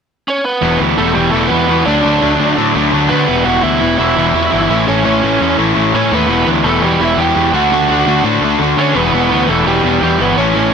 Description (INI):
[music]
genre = punk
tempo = 169 BPM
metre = 4/4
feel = straight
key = E dorian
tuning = A4 = 440 Hz
[part]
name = biting lead guitar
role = melody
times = 0.3-10.7 s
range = G3 to G5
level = -16 LUFS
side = right 2 dB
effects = overdrive, ping-pong delay
[part]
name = distorted electric guitar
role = riff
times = 0.6-10.7 s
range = A2 to F#4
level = -16 LUFS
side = right 14 dB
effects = distortion
[part]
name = overdriven semi-hollow guitar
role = riff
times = 0.6-10.7 s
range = E2 to D4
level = -15 LUFS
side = left 12 dB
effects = none
[part]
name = growling picked electric bass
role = bass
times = 0.6-10.7 s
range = E1 to D3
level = -19 LUFS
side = equal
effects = overdrive
[sound]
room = light reverb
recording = none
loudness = -10 LUFS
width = side -6 dB against mid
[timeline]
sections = 0.6-10.7 A section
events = none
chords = 0.0 Bsus2; 0.6 Em; 1.9 D; 3.3 Em; 4.7 A; 6.3 Em; 7.5 D; 9.0 Em